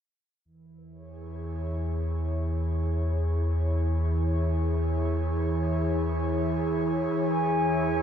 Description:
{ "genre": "ambient", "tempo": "free time", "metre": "none", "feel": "none", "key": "C# minor", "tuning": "A4 = 437 Hz", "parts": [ { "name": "airy breathy pad", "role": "sustained chords", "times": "0.5-8.0 s", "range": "E3 to C#5", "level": "-28 LUFS", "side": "equal", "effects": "chorus" }, { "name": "warm sub bass", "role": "bass", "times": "0.5-8.0 s", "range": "E2", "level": "-28 LUFS", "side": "equal", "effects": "none" }, { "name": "glass harmonica", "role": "texture", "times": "7.1-8.0 s", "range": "G#5", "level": "-28 LUFS", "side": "right 3 dB", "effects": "stereo widening" } ], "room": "moderate huge ambient reverb, RT60 7.9 s", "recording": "in a vast, echoing space", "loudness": "-25 LUFS", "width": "side -8 dB against mid", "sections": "0.5-8.0 A section", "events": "fade-in on analog synth pad 0.5-8.0", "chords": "0.5 C#m/E" }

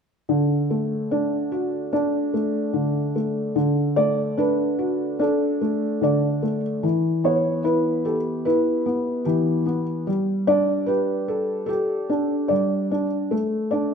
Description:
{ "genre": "children's music, lullaby", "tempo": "74 BPM", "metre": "4/4", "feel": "straight", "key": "D major", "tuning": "A4 = 437 Hz", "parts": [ { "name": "felt-muted upright piano", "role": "solo", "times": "0.3-13.9 s", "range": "D3 to D5", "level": "-20 LUFS", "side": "equal", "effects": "none" } ], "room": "wet recital hall reverb, RT60 1.7 s", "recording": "minimal, uncompressed stereo recording", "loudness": "-20 LUFS", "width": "side -6 dB against mid", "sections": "0.3-3.6 A section; 3.6-13.9 B section", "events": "none", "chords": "0.3 D; 6.8 Em; 10.1 Gsus2; 13.3 Asus4" }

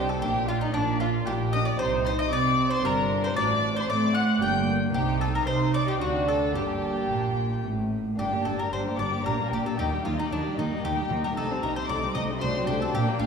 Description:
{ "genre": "classical, baroque-style concerto movement with solo episodes", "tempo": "114 BPM", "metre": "3/4", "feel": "straight", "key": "G minor", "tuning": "A4 = 436 Hz", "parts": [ { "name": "bowl-back mandolin", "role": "melody", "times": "0.0-13.3 s", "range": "D4 to G5", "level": "-32 LUFS", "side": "left 1 dB", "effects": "none" }, { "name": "warm chamber violin section", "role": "melody", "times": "0.0-13.3 s", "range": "D5 to G6", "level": "-31 LUFS", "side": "left 4 dB", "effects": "none" }, { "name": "rich chamber violin section", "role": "second line", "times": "0.0-13.3 s", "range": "Bb3 to G5", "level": "-32 LUFS", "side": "equal", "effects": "none" }, { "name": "lute", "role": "accompaniment", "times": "0.0-13.3 s", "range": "G2 to G4", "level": "-34 LUFS", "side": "equal", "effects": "none" }, { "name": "warm chamber viola section", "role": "accompaniment", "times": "0.0-13.3 s", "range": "F#3 to Eb4", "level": "-33 LUFS", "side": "equal", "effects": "none" }, { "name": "rich chamber double bass section", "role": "bass", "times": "0.0-13.3 s", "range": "G1 to C3", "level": "-31 LUFS", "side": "right 3 dB", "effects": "none" }, { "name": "warm chamber cello section", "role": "bass", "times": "0.0-13.3 s", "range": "G2 to C4", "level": "-31 LUFS", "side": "right 1 dB", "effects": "none" } ], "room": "wet scoring stage reverb, RT60 2.0 s", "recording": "heard from further back in the room", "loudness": "-23 LUFS", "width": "side -6 dB against mid", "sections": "0.0-8.2 A section; 8.2-13.3 A section", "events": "none", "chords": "0.2 Bb6; 1.8 Cm; 2.8 Gm; 3.4 D7/A; 4.4 Gm; 4.9 Cm; 6.0 D7; 6.6 Gm; 9.3 Gm/Bb; 9.8 Eb; 11.4 Am7b5/C; 12.4 D7/C" }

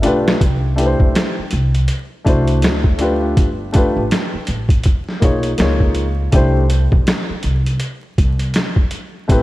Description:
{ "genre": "hip hop, jazz-hop", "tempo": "81 BPM", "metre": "4/4", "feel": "swing 60% on 16ths", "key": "C major", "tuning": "A4 = 439 Hz", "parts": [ { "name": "dark grand piano", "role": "accompaniment", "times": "0.0-9.4 s", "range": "A3 to Db5", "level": "-18 LUFS", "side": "left 1 dB", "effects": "none" }, { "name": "upright bass", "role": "bass", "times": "0.0-9.4 s", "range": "G1 to D2", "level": "-18 LUFS", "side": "equal", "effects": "none" }, { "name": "boom bap sampler-style drum kit", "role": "drums", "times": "0.0-9.4 s", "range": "hi-hat, kick drum, snare drum", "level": "-16 LUFS", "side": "equal", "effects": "none" } ], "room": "light reverb, small room ambience", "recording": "vinyl crackle", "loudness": "-14 LUFS", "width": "side -17 dB against mid", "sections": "0.4-9.4 A section", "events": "drum fill 0.0-0.4", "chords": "0.4 C6; 2.6 D9; 3.4 G9; 5.6 Db6; 6.3 N.C." }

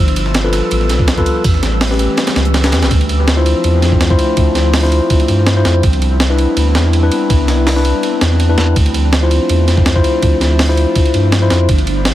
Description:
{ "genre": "drum and bass, jungle", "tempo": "164 BPM", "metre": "4/4", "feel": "swing 53% on 16ths", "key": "D dorian", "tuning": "A4 = 439 Hz", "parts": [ { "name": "airy breathy pad", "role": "sustained chords", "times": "0.0-12.1 s", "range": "E3 to E4", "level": "-21 LUFS", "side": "right 1 dB", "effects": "chorus" }, { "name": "saturated sub bass", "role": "bass", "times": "0.0-12.1 s", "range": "G1 to G2", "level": "-14 LUFS", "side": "equal", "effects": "tube saturation" }, { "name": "wind-like tuned noise texture", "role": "texture", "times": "0.0-2.9 s", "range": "E6", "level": "-29 LUFS", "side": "right 5 dB", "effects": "built-in reverb" }, { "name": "breakbeat sampler-style drum kit", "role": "drums", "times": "0.1-12.1 s", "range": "hi-hat, kick drum, ride cymbal, snare drum", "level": "-15 LUFS", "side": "right 1 dB", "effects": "none" }, { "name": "breakbeat sampler-style drum kit", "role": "drums", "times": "0.2-2.9 s", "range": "hi-hat, snare drum", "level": "-28 LUFS", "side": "right 4 dB", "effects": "none" }, { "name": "mellow tine electric piano", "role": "stabs", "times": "0.4-11.7 s", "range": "C#4 to C5", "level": "-17 LUFS", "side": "left 3 dB", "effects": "vintage 12-bit sampler grit, dub echo" } ], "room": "light reverb", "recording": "heavily compressed radio sound", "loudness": "-10 LUFS", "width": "side -13 dB against mid", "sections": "0.0-2.9 A section; 2.9-12.1 A section", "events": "drop 0.0-2.9, 2.9-12.1; kick drops out 2.2-2.9", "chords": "0.0 G7; 1.4 A7; 2.9 Dm7; 5.8 Cmaj7; 8.8 Dm7" }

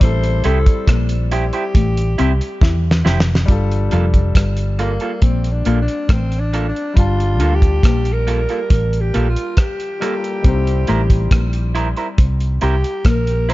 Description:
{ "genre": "lovers rock reggae", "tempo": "69 BPM", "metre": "4/4", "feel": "straight", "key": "G dorian", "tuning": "A4 = 440 Hz", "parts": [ { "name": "growling alto saxophone", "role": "melody", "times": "0.0-13.5 s", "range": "Bb3 to C5", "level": "-23 LUFS", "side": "equal", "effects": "tape echo" }, { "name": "warm concert grand piano", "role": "accompaniment", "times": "0.0-13.5 s", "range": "G3 to A5", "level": "-28 LUFS", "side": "left 5 dB", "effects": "tape echo" }, { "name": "mellow electric guitar", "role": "riff", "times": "0.0-13.3 s", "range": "F3 to E4", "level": "-25 LUFS", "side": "left 5 dB", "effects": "phaser" }, { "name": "vintage muted fingered electric bass", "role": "bass", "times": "0.0-13.5 s", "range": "F1 to E2", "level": "-17 LUFS", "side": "equal", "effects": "none" }, { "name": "cloth-damped thuddy drum kit", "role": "drums", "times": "0.0-13.5 s", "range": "hi-hat, kick drum, rim click, snare drum", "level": "-15 LUFS", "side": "equal", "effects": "none" }, { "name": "electric guitar through a small old amp", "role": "stabs", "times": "0.4-13.5 s", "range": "Bb3 to C5", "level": "-25 LUFS", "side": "right 5 dB", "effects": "none" } ], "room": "little or no reverb", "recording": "nothing above 7.6 kHz", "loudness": "-14 LUFS", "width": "side -18 dB against mid", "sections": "0.0-3.5 A section; 3.5-13.5 B section", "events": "drum fill 2.6-3.5; alto saxophone solo 3.5-13.5", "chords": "0.0 Am7; 3.5 Gm9; 10.4 C7" }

